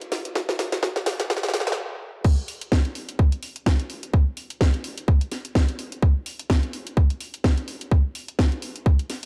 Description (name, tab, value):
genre	house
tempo	127 BPM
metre	4/4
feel	swing 56% on 16ths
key	none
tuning	none
part	garage drum kit	drums	0.0-9.3 s	crash cymbal, hi-hat, snare drum	-30 LUFS	equal	high-pass filter on hats, high-pass filter on snare, high-pass filter on cymbals
part	electronic kick drum	drums	0.4-9.0 s	none	-21 LUFS	equal	high-pass filter on kick
room	light reverb, digital ambience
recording	dark, warm production, high-pass filter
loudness	-24 LUFS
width	mono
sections	0.0-2.2 A section; 2.2-9.3 B section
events	build-up 0.0-2.2; drum fill 0.0-1.8; stop 1.8-2.2; drop 2.2-9.3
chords	none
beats	| 0.35 0.83 1.30 1.77 | 2.25 2.72 3.19 3.66 | 4.13 4.61 5.08 5.55 | 6.03 6.50 6.97 7.44 | 7.91 8.39 8.86